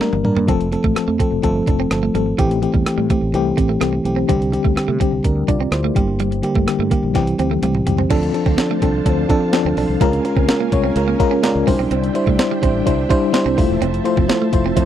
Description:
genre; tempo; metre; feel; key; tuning
1980s-style pop; 126 BPM; 4/4; straight; F major; A4 = 440 Hz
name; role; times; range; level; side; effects
FM electric piano with auto-pan; accompaniment; 0.0-14.9 s; D3 to D5; -18 LUFS; left 2 dB; none
clean electric guitar; riff; 0.0-14.7 s; G3 to D4; -25 LUFS; right 12 dB; lush chorus, slapback echo
fretless electric bass; bass; 0.0-14.9 s; E1 to C3; -22 LUFS; right 1 dB; none
clean 12-bit digital drum machine; drums; 0.0-14.9 s; crash cymbal, hi-hat, kick drum, rim click, snare drum, toms; -19 LUFS; right 1 dB; none
string machine, cellos; sustained chords; 8.1-14.9 s; F3 to A5; -26 LUFS; right 3 dB; ensemble chorus
cowbell; percussion; 8.1-14.9 s; none; -29 LUFS; right 23 dB; none
room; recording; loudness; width
little or no reverb; dry, close 1970s-style studio recording; -15 LUFS; side -11 dB against mid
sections
0.0-8.1 A section; 8.1-14.9 B section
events
drum fill 0.0-0.5, 7.2-8.1; FM electric piano fill 11.2-11.9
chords
0.5 F; 2.4 Am7; 4.3 Csus2; 6.0 Gm; 7.2 C; 8.1 Dm7; 10.0 Db6; 11.7 Cadd9; 13.6 Fmaj7

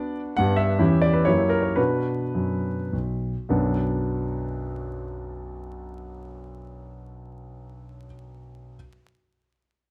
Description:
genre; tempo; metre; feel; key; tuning
classical, romantic triple-time dance for piano with dotted rhythms; 100-163 BPM; 3/4; rubato; B minor; A4 = 440 Hz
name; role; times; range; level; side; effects
warm concert grand piano; solo; 0.0-8.8 s; B1 to F#5; -26 LUFS; equal; none
room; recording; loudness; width
light reverb; dark, warm production, vinyl crackle; -24 LUFS; mono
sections
0.0-3.5 A section; 3.5-6.7 B section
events
slowing down 0.0-3.5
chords
0.4 G; 0.8 C#dim/E; 1.3 F#7b9; 1.8 Bm

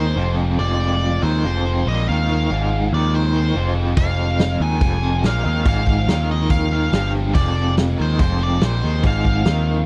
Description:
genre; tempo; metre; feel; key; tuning
indie rock; 142 BPM; 4/4; straight; F dorian; A4 = 440 Hz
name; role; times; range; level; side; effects
nasal lead guitar with a parked wah; melody; 0.0-9.9 s; C5 to Ab5; -28 LUFS; equal; overdrive
biting overdriven guitar; riff; 0.0-9.9 s; F2 to Eb3; -26 LUFS; equal; tremolo
biting overdriven guitar; riff; 0.0-9.9 s; F3 to C4; -32 LUFS; equal; analog chorus
growling picked electric bass; bass; 0.0-9.9 s; F1 to Eb2; -22 LUFS; equal; overdrive
loose indie drum kit; drums; 4.0-9.6 s; hi-hat, kick drum, snare drum; -21 LUFS; equal; none
room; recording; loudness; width
little or no reverb; dry, close 1970s-style studio recording; -19 LUFS; mono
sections
0.0-9.9 A section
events
none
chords
0.0 Fm

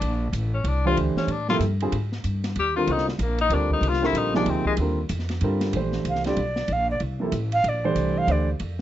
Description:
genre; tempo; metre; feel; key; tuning
modal jazz; 189 BPM; 3/4; swing 62% on 8ths; Bb lydian; A4 = 440 Hz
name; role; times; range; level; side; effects
breathy tenor saxophone; second line; 0.0-4.7 s; G3 to G4; -25 LUFS; left 5 dB; none
upright bass; bass; 0.0-8.8 s; A1 to A2; -26 LUFS; equal; none
open jazz drum kit; drums; 0.0-8.8 s; hi-hat, kick drum, ride cymbal, snare drum; -34 LUFS; equal; none
warm upright piano; accompaniment; 0.9-8.5 s; C3 to C5; -25 LUFS; right 2 dB; none
jazz flute; melody; 6.1-8.5 s; D5 to F5; -25 LUFS; right 2 dB; none
room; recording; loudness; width
light reverb; nothing above 7.8 kHz; -21 LUFS; side -12 dB against mid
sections
0.0-5.7 A section; 5.7-8.8 A section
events
tenor saxophone solo 0.0-5.7; flute solo 5.7-8.8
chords
0.0 Bbmaj9; 1.9 Abmaj9; 5.7 Bbmaj9

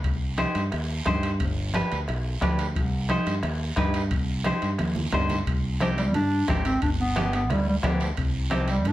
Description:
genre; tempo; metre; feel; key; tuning
latin, cumbia; 177 BPM; 4/4; straight; C harmonic minor; A4 = 439 Hz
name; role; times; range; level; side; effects
fingered electric bass; bass; 0.0-8.9 s; G1 to G2; -27 LUFS; equal; none
bombo; percussion; 0.0-8.7 s; none; -30 LUFS; left 1 dB; none
congas; percussion; 0.0-8.9 s; none; -32 LUFS; right 1 dB; none
guiro; percussion; 0.0-8.9 s; none; -39 LUFS; right 4 dB; none
timbales; percussion; 0.0-8.9 s; none; -38 LUFS; right 5 dB; none
semi-hollow electric guitar; accompaniment; 0.4-8.8 s; B3 to C5; -29 LUFS; equal; none
warm clarinet; melody; 5.8-8.9 s; F3 to D4; -26 LUFS; equal; plate reverb
room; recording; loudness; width
moderate large studio reverb, RT60 0.9 s; none; -23 LUFS; side -15 dB against mid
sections
0.0-5.5 A section; 5.5-8.9 B section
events
drum fill 4.5-5.5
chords
0.0 Cm; 1.4 G; 2.8 Cm; 6.8 G; 8.2 Cm

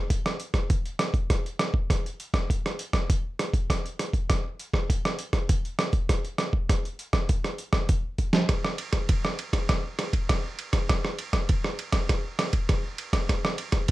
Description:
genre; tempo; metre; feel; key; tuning
samba; 100 BPM; 4/4; straight; none; none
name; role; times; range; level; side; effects
dusty soul sampler-style drum kit; drums; 0.1-13.9 s; hi-hat, kick drum, ride cymbal, rim click, snare drum; -24 LUFS; equal; overdrive
room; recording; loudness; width
light reverb; none; -24 LUFS; side -17 dB against mid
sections
0.0-8.5 A section; 8.5-13.9 B section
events
drum fill 8.2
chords
none

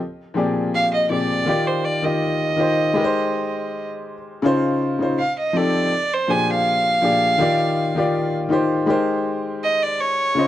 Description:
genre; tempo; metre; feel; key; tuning
R&B; 81 BPM; 4/4; swing 53% on 16ths; Eb major; A4 = 441 Hz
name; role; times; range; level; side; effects
clear grand piano; accompaniment; 0.3-10.5 s; Bb2 to Eb5; -20 LUFS; left 2 dB; none
rich fiddle; melody; 0.7-10.5 s; C5 to Ab5; -20 LUFS; right 2 dB; none
room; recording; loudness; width
studio ambience; dry, close 1970s-style studio recording; -18 LUFS; side -12 dB against mid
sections
0.0-10.5 A section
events
fiddle solo 0.0-10.5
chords
0.0 Bb13; 1.5 Ebmaj7; 2.9 Abmaj9; 4.4 Dbmaj9; 5.2 F7; 5.9 Bb13; 7.4 Ebmaj7; 8.9 Abmaj9

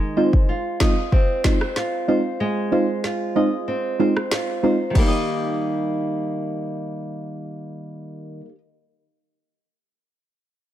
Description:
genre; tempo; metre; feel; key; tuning
dancehall; 94 BPM; 4/4; straight; Eb major; A4 = 439 Hz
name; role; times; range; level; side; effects
flamenco guitar; arpeggios; 0.0-8.6 s; Eb3 to Eb5; -25 LUFS; equal; none
deep mellow chord stab; accompaniment; 0.2-8.3 s; G3 to G4; -22 LUFS; right 1 dB; chorus, sidechain pumping
afro-pop drum kit; drums; 0.3-5.1 s; crash cymbal, kick drum, rim click, snare drum; -20 LUFS; equal; overdrive
room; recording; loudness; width
light reverb; none; -19 LUFS; side -12 dB against mid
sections
0.0-5.0 A section; 5.0-7.5 B section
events
none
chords
0.0 Ab6; 5.0 Eb

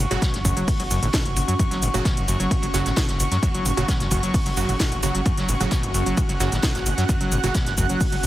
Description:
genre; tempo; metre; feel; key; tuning
driving peak-time techno; 131 BPM; 4/4; straight; unclear; A4 = 440 Hz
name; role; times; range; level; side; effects
overdriven acid bass; riff; 0.0-8.3 s; F#1 to F#3; -27 LUFS; equal; sidechain pumping, dub echo
gritty driven synth bass; bass; 0.0-8.3 s; F#1 to F#2; -26 LUFS; equal; sidechain pumping
airy breathy pad; texture; 0.0-8.3 s; C#4 to F#6; -28 LUFS; equal; chorus, sidechain pumping
supersaw stab; stabs; 0.1-7.5 s; C#3 to F#4; -30 LUFS; right 3 dB; none
techno drum kit; drums; 0.1-8.3 s; hi-hat, shaker, snare drum; -28 LUFS; equal; overdrive, sidechain pumping on hats, sidechain pumping on cymbals, sidechain pumping on perc
electronic kick drum; drums; 0.2-8.1 s; none; -23 LUFS; equal; overdrive
warm soul drum kit; drums; 0.2-8.3 s; hi-hat, ride cymbal, snare drum; -34 LUFS; equal; sidechain pumping on cymbals, high-pass filter on cymbals, sidechain pumping on hats, high-pass filter on hats, high-pass filter on snare, high-pass filter on room
room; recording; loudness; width
small room reverb; heavily compressed radio sound; -19 LUFS; side -15 dB against mid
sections
0.0-8.3 A section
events
none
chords
0.0 F#5

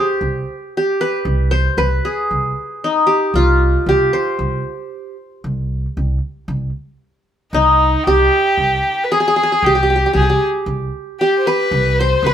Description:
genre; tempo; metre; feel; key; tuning
arabic; 115 BPM; 4/4; straight; C maqam nahawand; A4 = 440 Hz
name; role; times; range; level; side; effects
qanun; melody; 0.0-12.3 s; Eb4 to C5; -16 LUFS; equal; none
upright bass; bass; 0.2-12.3 s; C2; -18 LUFS; right 1 dB; none
rich violin; second line; 7.5-12.3 s; Eb4 to C5; -17 LUFS; left 2 dB; none
room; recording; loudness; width
moderate studio reverb, RT60 0.6 s; band playing live in one room; -14 LUFS; side -9 dB against mid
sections
0.0-6.5 A section; 6.5-12.3 A section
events
none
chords
none

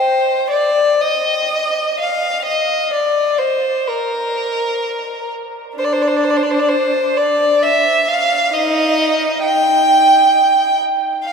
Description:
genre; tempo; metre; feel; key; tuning
classical, free, expressive piece for unaccompanied violin; 65 BPM; 3/4; uneven beats, rubato; unclear; A4 = 440 Hz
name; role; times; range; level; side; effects
clear violin; solo; 0.0-11.3 s; D4 to G5; -13 LUFS; equal; none
room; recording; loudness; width
wet cathedral reverb, RT60 6.2 s; in a vast, echoing space; -13 LUFS; side -5 dB against mid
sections
0.0-11.3 A section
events
none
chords
none

